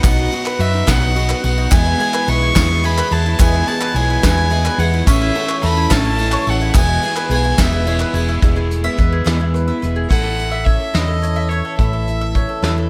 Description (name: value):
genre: indie folk with a building arrangement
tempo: 72 BPM (dotted quarters)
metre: 6/8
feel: straight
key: E major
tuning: A4 = 440 Hz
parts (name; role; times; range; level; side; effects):
- clear fiddle; melody; 0.0-12.9 s; C#5 to C#6; -24 LUFS; equal; none
- clear upright piano; accompaniment; 0.0-8.5 s; A1 to F#5; -33 LUFS; equal; none
- picked steel-string acoustic guitar; accompaniment; 0.0-10.1 s; E2 to F#4; -27 LUFS; equal; none
- mandolin; arpeggios; 0.0-12.9 s; B3 to E5; -26 LUFS; equal; slapback echo
- hollow-body short-scale fingered electric bass; bass; 0.0-12.9 s; E1 to F#2; -21 LUFS; equal; none
- soft brush drum kit; drums; 0.0-12.8 s; crash cymbal, hi-hat, kick drum, ride cymbal, snare drum; -21 LUFS; equal; none
- group handclap; percussion; 0.0-8.2 s; none; -29 LUFS; equal; none
- tambourine; percussion; 0.0-8.4 s; none; -37 LUFS; equal; none
- tonewheel organ; sustained chords; 1.7-8.4 s; E3 to C#4; -32 LUFS; equal; none
- fingerpicked steel-string acoustic guitar; accompaniment; 8.4-12.9 s; E2 to A4; -29 LUFS; equal; none
room: light reverb, studio reverb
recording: none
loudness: -16 LUFS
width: mono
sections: 0.0-8.4 A section; 8.4-10.1 B section; 10.1-12.9 C section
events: none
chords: 0.0 B; 1.7 E; 5.1 A; 6.7 E; 10.1 A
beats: | 0.04 0.88 | 1.72 2.56 | 3.40 4.23 | 5.07 5.91 | 6.75 7.59 | 8.43 9.27 | 10.11 10.95 | 11.79 12.63